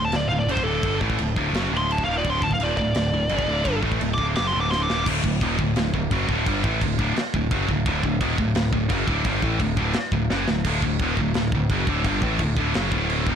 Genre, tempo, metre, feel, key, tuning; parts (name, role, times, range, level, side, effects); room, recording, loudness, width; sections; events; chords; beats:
heavy metal; 171 BPM; 4/4; straight; A4 = 440 Hz
high-gain lead guitar; melody; 0.0-5.1 s; A4 to D6; -26 LUFS; equal; distortion, tape echo
scooped high-gain guitar; riff; 0.0-13.4 s; D2 to A3; -24 LUFS; equal; distortion
growling picked electric bass; bass; 0.0-13.4 s; D1 to A1; -27 LUFS; equal; overdrive
tight metal drum kit; drums; 0.1-13.3 s; china cymbal, crash cymbal, kick drum, snare drum; -27 LUFS; equal
little or no reverb; blown-out, overdriven recording, overdrive; -20 LUFS; side -8 dB against mid
0.0-5.1 A section; 5.1-13.4 B section
lead electric guitar solo 0.0-5.1; drum fill 4.7-5.1, 10.3-10.7
0.0 D
0.14 0.49 | 0.84 1.20 1.55 1.90 | 2.25 2.60 2.95 3.30 | 3.65 4.00 4.36 4.71 | 5.06 5.41 5.76 6.11 | 6.46 6.81 7.16 7.51 | 7.86 8.21 8.56 8.91 | 9.26 9.61 9.96 10.30 | 10.65 11.00 11.35 11.70 | 12.05 12.40 12.75 13.10